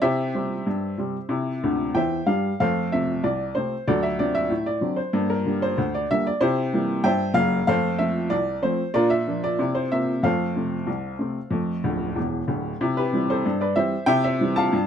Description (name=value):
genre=ragtime piano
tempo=94 BPM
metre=2/4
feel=straight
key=F major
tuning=A4 = 440 Hz
part: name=warm upright piano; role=solo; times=0.0-14.9 s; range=D1 to A5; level=-21 LUFS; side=equal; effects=none
room=little or no reverb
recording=close, detailed microphones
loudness=-21 LUFS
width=side -8 dB against mid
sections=0.0-12.8 A section; 12.8-14.9 B section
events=upright piano fill 1.6-2.6, 11.8-12.8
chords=0.0 C; 2.6 F; 3.9 D7; 5.1 Gm; 6.4 C7; 7.7 F; 8.9 Bb; 9.6 C7; 10.2 F; 12.8 C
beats=| 0.02 0.66 | 1.30 1.95 | 2.59 3.23 | 3.87 4.50 | 5.14 5.77 | 6.41 7.04 | 7.68 8.31 | 8.95 9.59 | 10.23 10.88 | 11.52 12.16 | 12.81 13.45 | 14.09 14.72